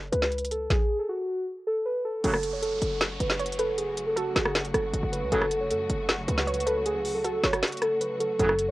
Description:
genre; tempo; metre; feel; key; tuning
hip hop, trap; 156 BPM; 4/4; half-time; F# minor; A4 = 440 Hz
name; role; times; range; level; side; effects
short 808-style bass; bass; 0.0-8.7 s; F#1 to F#2; -32 LUFS; equal; none
muted felt-like synth keys; melody; 0.1-8.7 s; F#4 to C#5; -28 LUFS; equal; chorus, low-pass filter, cassette tape
trap drum kit; drums; 0.1-8.7 s; hi-hat, kick drum, rim click, snare drum; -27 LUFS; equal; cassette tape
warm symphonic string section; sustained chords; 2.2-8.7 s; C#3 to F#4; -37 LUFS; left 1 dB; cassette tape
warm brass ensemble; stabs; 2.2-2.4, 5.3-5.4, 8.4-8.5 s; A2 to F#3; -28 LUFS; right 1 dB; cassette tape
downlifter; sound effects; 2.2-5.3 s; none; -41 LUFS; right 2 dB; none
warbly dusty pluck; second line; 3.4-8.4 s; G#4 to C#5; -33 LUFS; right 1 dB; chorus, cassette tape, analog delay
mellow electric guitar; accompaniment; 8.4-8.7 s; F#2; -32 LUFS; left 1 dB; spring reverb, low-pass filter, cassette tape
room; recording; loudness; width
light reverb; home recording on cassette; -25 LUFS; side -17 dB against mid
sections
0.0-2.2 A section; 2.2-8.7 B section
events
break 0.0-2.2; kick muted 7.6-8.4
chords
0.0 F#m (rootless); 2.2 F#m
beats
0.32 | 0.70 1.09 1.47 1.86 | 2.24 2.63 3.01 3.40 | 3.78 4.17 4.55 4.93 | 5.32 5.70 6.09 6.47 | 6.86 7.24 7.63 8.01 | 8.39

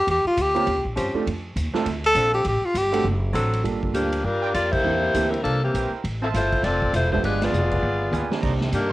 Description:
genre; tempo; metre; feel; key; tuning
jazz, big band swing; 201 BPM; 4/4; swing 61% on 8ths; G minor; A4 = 439 Hz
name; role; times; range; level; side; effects
warm tenor saxophone; melody; 0.0-3.1 s; F4 to A4; -20 LUFS; left 1 dB; cassette tape
upright bass; bass; 0.0-8.9 s; E1 to G2; -26 LUFS; equal; none
swinging big-band drum kit; drums; 0.1-8.8 s; crash cymbal, hi-hat, kick drum, ride cymbal, snare drum, toms; -31 LUFS; equal; cassette tape
warm baby grand piano; accompaniment; 0.5-8.7 s; Eb3 to A4; -27 LUFS; right 5 dB; none
warm saxophone section; sustained chords; 1.0-3.6 s; F3 to A4; -27 LUFS; equal; none
warm saxophone section; melody; 3.9-8.9 s; Eb3 to D5; -22 LUFS; left 1 dB; cassette tape
mellow trumpet section; stabs; 4.4-8.9 s; Eb4 to Bb5; -32 LUFS; right 6 dB; none
room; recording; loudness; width
light reverb, small room ambience; home recording on cassette; -20 LUFS; side -17 dB against mid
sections
0.0-3.6 A section; 3.6-8.9 B section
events
tenor saxophone solo 0.0-3.6; band accent 4.7, 7.4; drum fill 7.8-8.4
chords
0.1 Em7b5; 0.7 Eb13; 1.3 Dm7; 2.5 G9sus4; 3.1 D7; 3.6 Gm7; 4.8 C7; 6.0 Fmaj7; 7.2 G7b9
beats
| 0.08 0.38 0.67 0.97 | 1.27 1.56 1.86 2.16 | 2.46 2.75 3.05 3.35 | 3.65 3.95 4.25 4.54 | 4.84 5.14 5.44 5.74 | 6.04 6.33 6.63 6.93 | 7.23 7.53 7.83 8.13 | 8.43 8.72

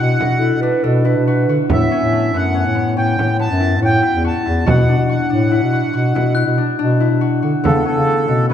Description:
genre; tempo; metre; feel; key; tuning
contemporary instrumental, chamber music in an uneven meter; 141 BPM; 7/4; straight; B minor; A4 = 442 Hz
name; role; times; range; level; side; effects
accordion; melody; 0.0-8.5 s; A4 to A5; -20 LUFS; right 2 dB; none
concert harp; arpeggios; 0.0-8.5 s; A3 to F#4; -20 LUFS; left 3 dB; none
mellow bass clarinet; bass; 0.0-8.5 s; E2 to D3; -17 LUFS; equal; none
mellow clarinet; second line; 0.2-1.6 s; F#4 to B4; -21 LUFS; right 4 dB; none
frame drum; percussion; 0.2-8.5 s; none; -22 LUFS; right 3 dB; none
glockenspiel with brass mallets; texture; 6.3-7.7 s; F#6; -27 LUFS; left 8 dB; none
room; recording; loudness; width
wet recital hall reverb, RT60 1.6 s; dark, warm production; -13 LUFS; side -9 dB against mid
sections
0.0-8.5 A section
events
none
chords
0.0 Bm; 1.7 Aadd9; 4.7 Bm; 7.7 C#m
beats
0.42 0.84 1.27 | 1.70 2.12 2.55 2.97 3.40 3.82 4.25 | 4.67 5.10 5.53 5.95 6.38 6.80 7.22 | 7.65 8.07 8.50

